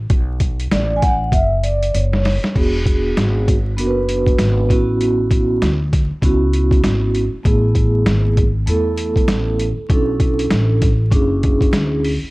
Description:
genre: hip hop, jazz-hop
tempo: 98 BPM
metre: 4/4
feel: swing 60% on 16ths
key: unclear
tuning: A4 = 440 Hz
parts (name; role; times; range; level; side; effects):
- upright bass; bass; 0.0-12.3 s; E1 to E2; -18 LUFS; equal; none
- boom bap sampler-style drum kit; drums; 0.1-12.2 s; crash cymbal, hi-hat, kick drum, snare drum; -17 LUFS; equal; overdrive
- vibraphone with soft mallets; accompaniment; 0.7-12.1 s; A3 to G#5; -19 LUFS; right 1 dB; none
room: studio reverb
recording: worn, warbling old tape, cassette tape, vinyl crackle, warbly pitch drift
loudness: -14 LUFS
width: side -22 dB against mid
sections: 0.0-2.6 A section; 2.6-12.3 B section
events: vibraphone solo 0.0-2.6; drum fill 1.3-2.6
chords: 0.1 Bm7; 1.3 F#5; 2.6 E9; 4.7 A69; 7.5 Eadd11/G#; 9.9 Bm11

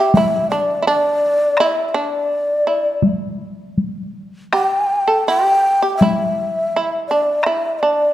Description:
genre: japanese traditional, Japanese chamber music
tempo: 83 BPM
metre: 4/4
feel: rubato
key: unclear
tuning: A4 = 438 Hz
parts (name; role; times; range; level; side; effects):
- breathy mellow long shakuhachi; melody; 0.0-8.1 s; D5 to G5; -17 LUFS; left 1 dB; none
- shamisen; second line; 0.0-8.1 s; D4 to A4; -20 LUFS; right 3 dB; none
- taiko ensemble; percussion; 0.1-7.6 s; none; -19 LUFS; left 1 dB; none
room: moderate concert hall reverb, RT60 1.8 s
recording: dark, warm production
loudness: -15 LUFS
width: side -13 dB against mid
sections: 0.0-8.1 A section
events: none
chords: none

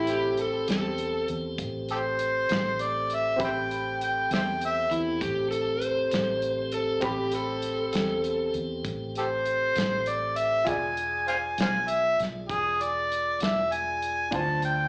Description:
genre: slow blues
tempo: 66 BPM (dotted quarters)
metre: 12/8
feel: straight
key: A minor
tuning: A4 = 441 Hz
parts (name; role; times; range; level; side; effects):
- warm harmonica; melody; 0.0-14.9 s; E4 to A5; -25 LUFS; equal; overdrive, plate reverb, slapback echo
- overdriven slide guitar; second line; 0.0-8.5 s; E4 to C5; -28 LUFS; equal; none
- bright upright piano; accompaniment; 0.0-14.9 s; C4 to B5; -35 LUFS; equal; plate reverb, slapback echo
- tonewheel organ; sustained chords; 0.0-14.9 s; F#3 to D5; -34 LUFS; equal; slow rotary speaker, plate reverb
- vintage muted fingered electric bass; bass; 0.0-14.9 s; E1 to E2; -36 LUFS; equal; none
- warm soul drum kit; drums; 0.1-14.8 s; hi-hat, kick drum, snare drum; -32 LUFS; equal; slapback echo
room: moderate club reverb, RT60 0.7 s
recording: live gig heard through the venue's PA, club reverb, small speaker sound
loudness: -24 LUFS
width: side -30 dB against mid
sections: 0.0-14.9 A section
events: none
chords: 0.0 Am9; 10.7 E7b9; 14.3 Dm7

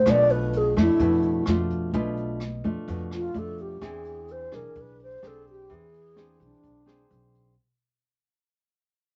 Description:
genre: bossa nova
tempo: 128 BPM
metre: 4/4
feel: straight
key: unclear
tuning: A4 = 437 Hz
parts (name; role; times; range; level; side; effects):
- breathy wooden-headed alto flute; melody; 0.0-7.1 s; D4 to D5; -26 LUFS; equal; none
- nylon-string guitar; accompaniment; 0.0-7.5 s; B2 to G#4; -30 LUFS; equal; none
- upright bass; bass; 0.0-7.5 s; B1 to F2; -33 LUFS; equal; none
- jazz brush drum kit; drums; 0.1-7.5 s; hi-hat, kick drum, rim click; -41 LUFS; equal; none
room: light reverb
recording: nothing above 7.8 kHz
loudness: -25 LUFS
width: mono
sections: 0.0-7.6 A section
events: fade-out 0.0-7.6; alto flute solo 0.0-7.6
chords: 0.1 Bm7b5; 3.8 E7b13

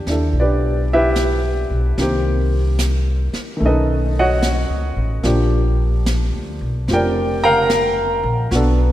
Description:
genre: jazz ballad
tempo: 74 BPM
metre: 4/4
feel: swing 67% on 8ths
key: unclear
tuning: A4 = 440 Hz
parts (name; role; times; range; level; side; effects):
- warm upright piano; accompaniment; 0.0-8.9 s; D3 to Bb5; -18 LUFS; equal; none
- upright bass; bass; 0.0-8.9 s; F1 to D#2; -18 LUFS; equal; none
- jazz brush drum kit; drums; 0.1-8.9 s; brushed snare drum, hi-hat, snare drum; -28 LUFS; right 1 dB; none
room: moderate lush hall reverb, RT60 2.3 s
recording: dreamy mix soaked in reverb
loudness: -15 LUFS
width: side -13 dB against mid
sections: 0.0-8.9 A section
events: none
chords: 0.0 Em7; 2.0 Cm7; 3.6 B9; 5.2 Bb6

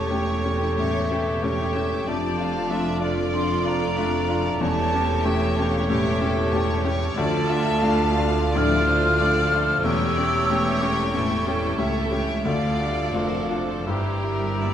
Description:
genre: classical, romantic movement for piano and orchestra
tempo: 79-96 BPM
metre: 4/4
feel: rubato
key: D minor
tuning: A4 = 440 Hz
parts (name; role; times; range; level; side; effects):
- clear grand piano; melody; 0.0-14.7 s; D2 to G4; -26 LUFS; left 2 dB; none
- rich chamber violin section; melody; 0.0-14.7 s; G4 to F5; -34 LUFS; left 1 dB; none
- dark clarinet; second line; 0.0-14.7 s; F4 to G4; -34 LUFS; right 1 dB; none
- mellow hollow silver concert flute; second line; 0.0-14.7 s; E5 to F6; -28 LUFS; left 1 dB; none
- rich chamber violin section; second line; 0.0-14.7 s; A3 to G5; -35 LUFS; equal; none
- warm cor anglais; second line; 0.0-14.7 s; C#5 to E5; -33 LUFS; right 2 dB; none
- mellow bassoon; accompaniment; 0.0-14.7 s; G3 to A3; -32 LUFS; right 1 dB; none
- rich chamber viola section; accompaniment; 0.0-14.7 s; E3 to A4; -30 LUFS; right 1 dB; none
- rich chamber cello section; bass; 0.0-14.7 s; C#2 to G2; -30 LUFS; equal; none
- warm studio double bass section; bass; 0.0-14.7 s; E1 to D2; -30 LUFS; right 1 dB; none
- mellow French horn section; sustained chords; 0.8-14.1 s; F3 to E4; -32 LUFS; left 3 dB; none
room: wet recital hall reverb, RT60 1.5 s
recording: none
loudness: -20 LUFS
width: side -9 dB against mid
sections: 0.0-14.7 A section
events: none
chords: 0.0 A7/E; 2.1 Dm/F; 4.6 A7/E; 7.2 Dm; 9.8 A7/E; 12.5 Dm; 13.9 Edim/G

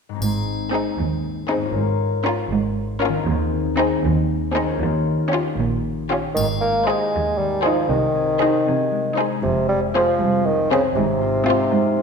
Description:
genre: cinematic, playful, whimsical film cue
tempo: 78 BPM (dotted quarters)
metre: 6/8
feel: straight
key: Ab major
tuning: A4 = 440 Hz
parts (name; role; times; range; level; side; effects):
- concert harp; arpeggios; 0.1-12.0 s; F2 to Bb4; -25 LUFS; left 7 dB; none
- rich chamber double bass section; bass; 0.2-11.4 s; F1 to Eb2; -26 LUFS; right 3 dB; none
- warm studio cello section; bass; 0.2-12.0 s; C2 to C3; -27 LUFS; right 4 dB; none
- triangle; percussion; 0.2-1.2, 6.4-7.3 s; none; -34 LUFS; left 3 dB; none
- warm symphonic violin section; melody; 0.7-11.7 s; G4 to C5; -30 LUFS; left 5 dB; none
- clear chamber violin section; second line; 0.7-11.7 s; Eb4 to Ab4; -28 LUFS; left 3 dB; none
- rich chamber viola section; accompaniment; 0.7-11.7 s; C4 to Eb4; -26 LUFS; right 1 dB; none
- warm bassoon; accompaniment; 6.3-12.0 s; C3 to Bb3; -20 LUFS; right 1 dB; none
room: wet scoring stage reverb, RT60 1.6 s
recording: none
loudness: -18 LUFS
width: side -5 dB against mid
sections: 0.2-6.4 A section; 6.4-12.0 B section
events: none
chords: 0.2 Ab; 1.7 Bbm7/Ab; 3.3 Ab/Eb; 4.8 Eb9; 6.4 Ab; 7.9 Ab/C; 9.4 Fm; 11.0 Fm/Ab

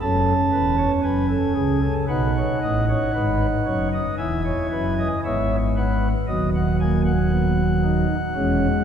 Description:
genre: classical, baroque-style 4-part fugue for pipe organ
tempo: 58 BPM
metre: 4/4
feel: straight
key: unclear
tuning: A4 = 440 Hz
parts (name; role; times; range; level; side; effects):
- pipe organ, flutes; solo; 0.0-8.8 s; D#1 to A5; -19 LUFS; equal; none
room: wet church reverb, RT60 3.7 s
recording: heard from further back in the room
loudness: -19 LUFS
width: side -8 dB against mid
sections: 0.0-8.8 A section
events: none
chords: 0.0 F#m7; 2.1 B7; 4.2 E; 6.3 B/D#; 8.3 C#m/E

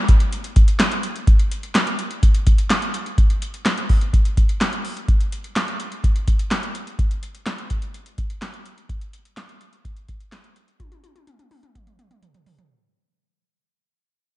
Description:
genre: pop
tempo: 126 BPM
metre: 4/4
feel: straight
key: none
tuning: none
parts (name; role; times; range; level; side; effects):
- electro analog drum machine; drums; 0.1-12.7 s; handclaps, hi-hat, kick drum, snare drum, toms; -18 LUFS; equal; none
room: little or no reverb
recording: dark, warm production, nothing above 10.9 kHz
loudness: -18 LUFS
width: side -17 dB against mid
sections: 0.0-12.7 A section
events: fade-out 0.0-12.7; drum fill 10.8-12.7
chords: none

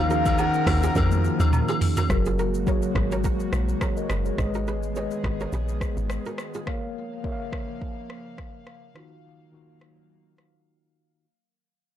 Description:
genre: afrobeats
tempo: 105 BPM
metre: 4/4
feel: swing 55% on 16ths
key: unclear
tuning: A4 = 440 Hz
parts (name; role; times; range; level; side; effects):
- soft octave-layered synth lead; melody; 0.0-1.0 s; E#5 to F#5; -27 LUFS; left 3 dB; chorus, ping-pong delay
- warm horn section; second line; 0.0-1.8 s; D#3 to A#4; -31 LUFS; left 3 dB; none
- mellow tine electric piano; accompaniment; 0.0-11.3 s; D#3 to E#5; -30 LUFS; left 2 dB; medium stereo tremolo
- airy breathy pad; sustained chords; 0.0-11.2 s; C#3 to E#5; -34 LUFS; equal; chorus
- kora; riff; 0.0-6.6 s; D#4 to D#5; -34 LUFS; right 4 dB; ping-pong delay
- deep log drum bass; bass; 0.0-6.2 s; F#1 to E#2; -25 LUFS; equal; none
- afro-pop drum kit; drums; 0.1-10.5 s; hi-hat, kick drum, rim click, shaker, toms; -28 LUFS; equal; soft clipping on snare
- agogo bells and woodblock; percussion; 0.3-2.1 s; none; -32 LUFS; left 2 dB; none
room: light reverb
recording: blown-out, overdriven recording, overdrive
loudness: -22 LUFS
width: side -11 dB against mid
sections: 0.0-2.1 A section; 2.1-11.2 B section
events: drum fill 1.0-2.1; fade-out 2.1-11.2; break 10.7-11.2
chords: 0.0 D#madd9; 2.1 F#add9; 4.4 G#m; 6.7 A#m; 9.0 D#madd9

